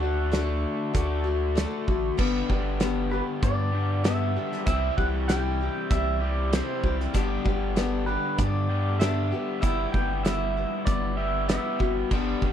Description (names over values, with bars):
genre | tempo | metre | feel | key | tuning
folk rock and heartland rock | 97 BPM | 4/4 | straight | G major | A4 = 440 Hz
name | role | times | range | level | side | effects
pedal steel guitar | melody | 0.0-11.9 s | B4 to G5 | -31 LUFS | right 3 dB | slapback echo
picked acoustic archtop guitar | accompaniment | 0.0-12.5 s | G2 to G4 | -30 LUFS | left 9 dB | none
raw garage guitar | riff | 0.0-12.5 s | G2 to G4 | -32 LUFS | equal | overdrive
warm sub bass | bass | 0.0-12.5 s | G1 to G2 | -28 LUFS | right 1 dB | none
loose indie drum kit | drums | 0.3-12.5 s | crash cymbal, hi-hat, kick drum, snare drum | -27 LUFS | right 1 dB | none
room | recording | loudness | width
little or no reverb | none | -23 LUFS | side -9 dB against mid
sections
0.0-2.2 A section; 2.2-12.5 B section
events
none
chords
0.0 D; 2.2 G; 4.7 C; 7.1 G; 9.6 Emadd9/G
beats
0.33 0.95 1.57 | 2.19 2.81 3.43 4.05 | 4.67 5.29 5.91 6.53 | 7.15 7.77 8.39 9.01 | 9.63 10.25 10.87 11.49 | 12.11